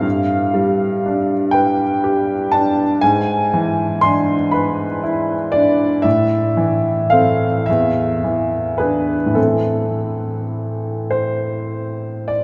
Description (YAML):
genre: classical, romantic nocturne for solo piano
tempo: 33-42 BPM (dotted quarters)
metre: 6/8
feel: rubato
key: A minor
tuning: A4 = 440 Hz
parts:
  - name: clear upright piano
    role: solo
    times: 0.0-12.4 s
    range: E2 to C6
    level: -18 LUFS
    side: equal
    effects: none
room: wet cathedral reverb, RT60 4.9 s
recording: recorded in a church or concert hall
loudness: -18 LUFS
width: mono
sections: 0.0-12.4 A section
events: none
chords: 0.0 G; 3.0 E7/G#; 6.0 Am; 7.7 E7; 9.4 Am